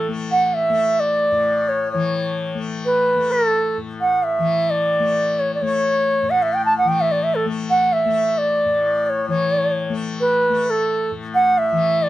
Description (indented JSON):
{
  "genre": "indian classical",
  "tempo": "130 BPM",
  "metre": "4/4",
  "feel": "straight",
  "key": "A raga khamaj",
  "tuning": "A4 = 441 Hz",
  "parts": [
    { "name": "bright reedy bansuri", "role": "melody", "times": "0.0-12.1 s", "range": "A4 to A5", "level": "-17 LUFS", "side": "right 1 dB", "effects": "none" },
    { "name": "tanpura", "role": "drone", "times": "0.0-12.1 s", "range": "A2 to A3", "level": "-26 LUFS", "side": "left 5 dB", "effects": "none" }
  ],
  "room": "light reverb",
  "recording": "none",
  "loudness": "-17 LUFS",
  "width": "side -14 dB against mid",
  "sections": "0.0-9.3 A section; 9.3-12.1 B section",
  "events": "none",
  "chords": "none"
}